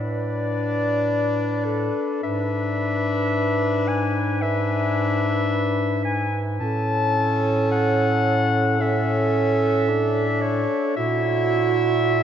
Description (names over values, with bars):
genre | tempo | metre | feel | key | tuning
classical, lyrical piece for single-reed quartet | 55 BPM | 4/4 | rubato | A major | A4 = 436 Hz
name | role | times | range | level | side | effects
warm clarinet | melody | 0.0-12.2 s | A4 to A5 | -25 LUFS | left 4 dB | none
clear alto saxophone | second line | 0.0-12.2 s | F#4 to B4 | -26 LUFS | right 5 dB | none
clear tenor saxophone | accompaniment | 0.0-12.2 s | C#4 to E4 | -26 LUFS | left 2 dB | none
dark bass clarinet | bass | 0.0-12.2 s | G#2 to A#2 | -25 LUFS | right 2 dB | none
room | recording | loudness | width
wet cathedral reverb, RT60 5.6 s | in a vast, echoing space, nothing above 7.9 kHz | -19 LUFS | side -9 dB against mid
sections
0.0-12.2 A section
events
none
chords
0.0 Bm7/A; 2.2 E7/G#; 6.6 A; 11.0 F#7/A#